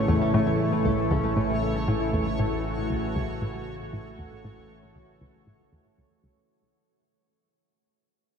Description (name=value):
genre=ambient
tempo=117 BPM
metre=4/4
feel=straight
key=A major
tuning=A4 = 439 Hz
part: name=lush unison pad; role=sustained chords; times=0.0-6.5 s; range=C#3 to A4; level=-28 LUFS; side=right 1 dB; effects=chorus
part: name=concert harp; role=arpeggios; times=0.0-5.6 s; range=A3 to A4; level=-32 LUFS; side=moving between left 8 dB and equal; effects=auto-pan, tape echo
part: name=fat analog bass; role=bass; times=0.0-6.5 s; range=A1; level=-33 LUFS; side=equal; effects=none
part: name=bubbling stepped-filter texture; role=texture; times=0.0-6.5 s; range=C#5 to C#6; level=-36 LUFS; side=equal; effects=chorus, built-in reverb
part: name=hollow square pluck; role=riff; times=0.1-6.4 s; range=C#2 to A2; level=-28 LUFS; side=equal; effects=chorus, tape echo
room=wet huge ambient reverb, RT60 8.0 s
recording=dark, warm production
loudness=-23 LUFS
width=side -6 dB against mid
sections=0.0-6.5 A section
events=fade-out on analog synth bass 0.0-6.5; fade-out 0.0-6.5; filter sweep on synth arpeggio sound 0.0-6.5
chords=0.0 A